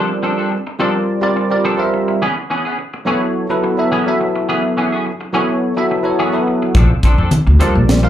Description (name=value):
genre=electric jazz fusion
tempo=106 BPM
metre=4/4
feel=swing 53% on 16ths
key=unclear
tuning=A4 = 440 Hz
part: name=bell-like tine electric piano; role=accompaniment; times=0.0-8.1 s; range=Gb3 to F5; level=-16 LUFS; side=equal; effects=analog chorus, slapback echo
part: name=semi-hollow electric guitar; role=stabs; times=0.0-8.1 s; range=E3 to A4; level=-20 LUFS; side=left 1 dB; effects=analog chorus, slapback echo
part: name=upright bass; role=bass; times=6.7-8.1 s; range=Bb1 to F2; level=-12 LUFS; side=equal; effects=none
part: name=crisp fusion drum kit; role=drums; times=6.7-8.0 s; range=hi-hat, kick drum, snare drum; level=-14 LUFS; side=equal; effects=none
part: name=congas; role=percussion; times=6.7-8.0 s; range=none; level=-18 LUFS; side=left 1 dB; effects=none
room=light reverb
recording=live gig heard through the venue's PA, club ambience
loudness=-14 LUFS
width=side -11 dB against mid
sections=0.0-8.1 A section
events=none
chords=0.0 Bbmaj9; 2.2 Amaj9; 6.8 Bbmaj9